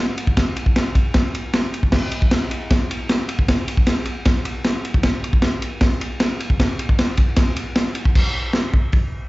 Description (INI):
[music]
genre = rock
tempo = 154 BPM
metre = 4/4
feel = straight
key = none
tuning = none
[part]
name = crunchy breakbeat drum kit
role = drums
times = 0.2-9.0 s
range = crash cymbal, hi-hat, kick drum, ride cymbal, snare drum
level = -17 LUFS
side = equal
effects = none
[sound]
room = light reverb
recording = live gig heard through the venue's PA, club reverb, nothing above 7.7 kHz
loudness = -17 LUFS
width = side -20 dB against mid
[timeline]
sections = 0.0-8.2 A section; 8.2-9.3 B section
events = none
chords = none